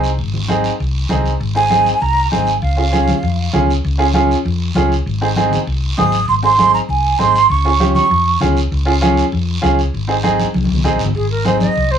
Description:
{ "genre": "latin, cumbia", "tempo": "197 BPM", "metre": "4/4", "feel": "straight", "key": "Ab major", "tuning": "A4 = 438 Hz", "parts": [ { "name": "clear upright piano", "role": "accompaniment", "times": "0.0-11.7 s", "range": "C4 to Ab4", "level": "-17 LUFS", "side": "right 1 dB", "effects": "cassette tape" }, { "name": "hollow-body short-scale fingered electric bass", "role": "bass", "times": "0.0-12.0 s", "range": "Ab1 to F2", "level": "-18 LUFS", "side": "left 1 dB", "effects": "none" }, { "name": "guiro", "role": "percussion", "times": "0.0-12.0 s", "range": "none", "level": "-28 LUFS", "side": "right 5 dB", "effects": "none" }, { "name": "congas", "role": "percussion", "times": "0.3-11.8 s", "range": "none", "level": "-22 LUFS", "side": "left 1 dB", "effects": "none" }, { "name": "breathy concert flute", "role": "melody", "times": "1.6-3.6, 6.0-8.4, 11.1-12.0 s", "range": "Ab4 to Eb6", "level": "-14 LUFS", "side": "right 4 dB", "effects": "cassette tape" } ], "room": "light reverb", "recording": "home recording on cassette", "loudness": "-13 LUFS", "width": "side -8 dB against mid", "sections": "0.0-1.4 A section; 1.4-11.2 B section", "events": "drum fill 10.5-11.2", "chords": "0.0 Ab; 2.6 Db; 5.1 Ab; 7.5 Db; 9.9 Ab" }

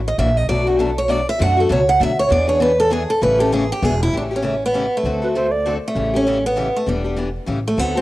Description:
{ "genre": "acoustic string swing (jazz manouche)", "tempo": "197 BPM", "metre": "3/4", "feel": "swing 58% on 8ths", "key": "A mixolydian", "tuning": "A4 = 439 Hz", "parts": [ { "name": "upright bass", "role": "bass", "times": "0.0-8.0 s", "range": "E1 to F#2", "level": "-23 LUFS", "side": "equal", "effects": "none" }, { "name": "picked steel-string acoustic guitar", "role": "melody", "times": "0.1-8.0 s", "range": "G3 to F#5", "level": "-18 LUFS", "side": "right 1 dB", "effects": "none" }, { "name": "picked steel-string acoustic guitar", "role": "accompaniment", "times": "0.2-8.0 s", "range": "B2 to A4", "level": "-22 LUFS", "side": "left 3 dB", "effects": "cassette tape" }, { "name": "alto recorder", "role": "second line", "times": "5.2-5.7 s", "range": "B4 to D5", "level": "-23 LUFS", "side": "right 2 dB", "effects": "cassette tape" } ], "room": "light reverb, small room ambience", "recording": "home recording on cassette", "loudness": "-16 LUFS", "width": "side -17 dB against mid", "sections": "0.0-4.1 A section; 4.1-8.0 B section", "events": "steel-string acoustic guitar solo 0.0-4.1", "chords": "0.5 Bm7; 2.3 E7; 3.2 A7; 3.8 E7; 4.1 A7; 5.0 D7; 6.0 A7; 6.9 Em7; 7.5 A7" }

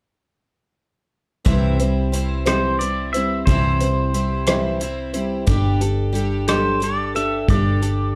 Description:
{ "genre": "folk rock and heartland rock", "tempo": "60 BPM (dotted quarters)", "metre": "6/8", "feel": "straight", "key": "C major", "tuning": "A4 = 443 Hz", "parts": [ { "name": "picked twelve-string acoustic guitar", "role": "accompaniment", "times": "1.4-8.2 s", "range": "C3 to C5", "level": "-24 LUFS", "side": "equal", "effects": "none" }, { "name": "hollow-body short-scale picked electric bass", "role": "bass", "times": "1.5-8.2 s", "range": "G1 to C2", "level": "-25 LUFS", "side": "equal", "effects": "none" }, { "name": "natural country drum kit", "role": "drums", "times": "1.5-8.0 s", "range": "hi-hat, kick drum, rim click", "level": "-24 LUFS", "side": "equal", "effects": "none" }, { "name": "pedal steel guitar", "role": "melody", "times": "2.5-8.2 s", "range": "C5 to E5", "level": "-26 LUFS", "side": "equal", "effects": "slapback echo" } ], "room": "light reverb", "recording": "dark, warm production", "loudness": "-20 LUFS", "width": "mono", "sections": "1.5-8.2 A section", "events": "none", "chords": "1.5 C; 5.5 Gsus2" }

